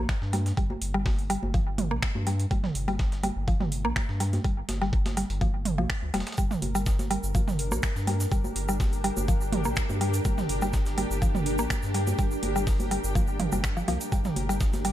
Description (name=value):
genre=minimal techno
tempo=124 BPM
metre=4/4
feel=swing 53% on 16ths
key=G minor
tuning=A4 = 440 Hz
part: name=round analog bass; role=bass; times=0.0-14.9 s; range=F1 to G2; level=-30 LUFS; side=equal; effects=tube saturation, sidechain pumping
part: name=breakbeat sampler-style drum kit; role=drums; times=0.1-14.9 s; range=hi-hat, snare drum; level=-43 LUFS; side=equal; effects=sidechain pumping on hats, high-pass filter on hats, high-pass filter on snare
part: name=electronic kick drum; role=drums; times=0.1-14.7 s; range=none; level=-26 LUFS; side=equal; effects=none
part: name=garage drum kit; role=drums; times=0.1-14.9 s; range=finger snaps, hi-hat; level=-34 LUFS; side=right 1 dB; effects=none
part: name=mallet-like synth pluck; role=riff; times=0.3-14.9 s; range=F3 to Bb3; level=-32 LUFS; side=equal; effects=chorus, sidechain pumping, dub echo
part: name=electronic congas and toms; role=percussion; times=0.3-14.8 s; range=none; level=-34 LUFS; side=right 3 dB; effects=overdrive, dub echo
part: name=tube shaker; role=percussion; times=6.4-14.8 s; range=none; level=-40 LUFS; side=right 4 dB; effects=none
part: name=granular cloud pad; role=texture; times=7.6-14.9 s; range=D4 to G5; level=-34 LUFS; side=equal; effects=built-in reverb, sidechain pumping
part: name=pulsing gated texture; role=texture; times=6.4-14.9 s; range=Bb4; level=-38 LUFS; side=left 1 dB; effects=chorus, built-in reverb, sidechain pumping
room=digital ambience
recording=none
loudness=-24 LUFS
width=side -12 dB against mid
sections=0.0-14.9 A section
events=none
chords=0.0 G5